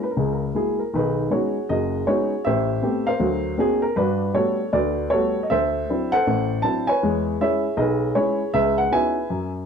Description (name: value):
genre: jazz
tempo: 158 BPM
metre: 4/4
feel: swing 63% on 8ths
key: unclear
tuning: A4 = 440 Hz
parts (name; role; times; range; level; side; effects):
- dark upright piano; solo; 0.0-9.6 s; F#1 to A5; -20 LUFS; equal; none
room: moderate club reverb, RT60 0.6 s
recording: dark, warm production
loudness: -19 LUFS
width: side -6 dB against mid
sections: 0.9-9.7 A section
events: none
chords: 0.0 F#9; 0.9 B69; 2.4 Am9; 3.2 D7alt; 4.0 Gmaj9; 5.5 D9; 7.0 E6; 8.5 C#m11